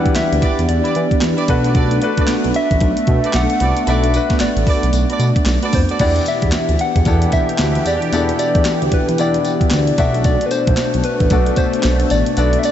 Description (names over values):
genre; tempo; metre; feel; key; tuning
R&B, new jack swing; 113 BPM; 4/4; swing 61% on 16ths; E minor; A4 = 440 Hz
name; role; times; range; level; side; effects
soft struck synth lead; melody; 0.0-12.7 s; B4 to F#5; -21 LUFS; left 1 dB; chorus
clear baby grand piano; accompaniment; 0.0-12.7 s; B2 to D5; -23 LUFS; left 3 dB; none
sweeping resonant pad; sustained chords; 0.0-12.7 s; B2 to G4; -20 LUFS; left 1 dB; chorus
clean 12-bit digital drum machine; drums; 0.1-12.7 s; crash cymbal, handclaps, hi-hat, kick drum, snare drum, tambourine; -19 LUFS; equal; overdrive
smooth synth bass; bass; 0.2-12.6 s; A1 to E3; -18 LUFS; equal; none
clear horn section; stabs; 0.4-6.1 s; E4 to D5; -26 LUFS; right 4 dB; none
room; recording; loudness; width
moderate huge ambient reverb, RT60 4.8 s; dreamy mix soaked in reverb, nothing above 8.0 kHz; -13 LUFS; side -10 dB against mid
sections
0.0-6.0 A section; 6.0-12.7 B section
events
none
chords
0.0 Em7; 1.5 Bm7; 6.0 Em7; 10.0 Bm7